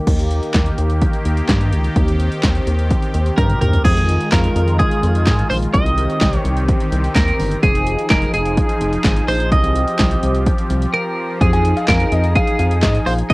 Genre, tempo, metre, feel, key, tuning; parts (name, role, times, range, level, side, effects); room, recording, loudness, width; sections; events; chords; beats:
synth-pop; 127 BPM; 4/4; straight; F minor; A4 = 441 Hz
sweeping resonant pad; sustained chords; 0.0-13.3 s; Eb3 to Ab4; -22 LUFS; equal; chorus
rubbery square bass; bass; 0.1-13.3 s; F1 to Ab2; -18 LUFS; equal
deep house drum kit; drums; 0.1-13.3 s; crash cymbal, handclaps, hi-hat, kick drum, snare drum, toms; -17 LUFS; equal; overdrive, cassette tape
twelve-string electric guitar; melody; 3.4-13.3 s; Ab4 to Eb5; -20 LUFS; right 1 dB
warm concert grand piano; second line; 11.5-13.2 s; Eb5 to Ab5; -23 LUFS; left 2 dB; analog delay
light reverb; home recording on cassette; -14 LUFS; side -22 dB against mid
0.1-3.9 A section; 3.9-13.3 B section
drum fill 3.4-3.9; break 10.9-11.4
0.1 Eb; 3.9 Fm7; 5.7 Cm; 7.6 Fm7; 9.5 Csus4; 11.4 Fm7
| 0.07 0.54 1.02 1.49 | 1.96 2.43 2.91 3.38 | 3.85 4.32 4.80 5.27 | 5.74 6.21 6.68 7.16 | 7.63 8.10 8.57 9.05 | 9.52 9.99 10.46 10.94 | 11.41 11.88 12.36 12.83 | 13.30